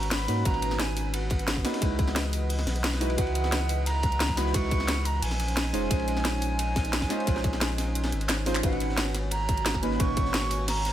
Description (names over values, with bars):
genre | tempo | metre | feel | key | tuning
liquid drum and bass | 176 BPM | 4/4 | straight | G# minor | A4 = 442 Hz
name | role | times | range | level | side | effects
silver concert flute | melody | 0.0-10.9 s | F#5 to C#6 | -33 LUFS | right 3 dB | ping-pong delay
deep mellow chord stab | accompaniment | 0.0-10.9 s | A#2 to B#4 | -32 LUFS | right 1 dB | chorus, tape echo
warm analog pad | sustained chords | 0.0-10.9 s | E3 to G#5 | -37 LUFS | equal | chorus, sidechain pumping
saturated sub bass | bass | 0.0-10.9 s | E#1 to G#2 | -29 LUFS | equal | none
crunchy breakbeat drum kit | drums | 0.0-10.9 s | hi-hat, ride cymbal, snare drum | -37 LUFS | equal | high-pass filter on hats, high-pass filter on cymbals, high-pass filter on snare, high-pass filter on room
garage drum kit | drums | 0.0-10.9 s | handclaps, hi-hat, snare drum | -30 LUFS | equal | none
electronic kick drum | drums | 0.5-10.2 s | none | -28 LUFS | equal | none
room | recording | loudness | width
small room ambience | none | -24 LUFS | side -12 dB against mid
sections
0.0-8.6 A section; 8.6-10.9 A section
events
drop 0.0-8.6, 8.6-10.9; drum fill 8.3-8.6; band accent 8.6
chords
0.0 G#m11; 1.8 C#m11; 5.2 A#m11; 8.6 G#m11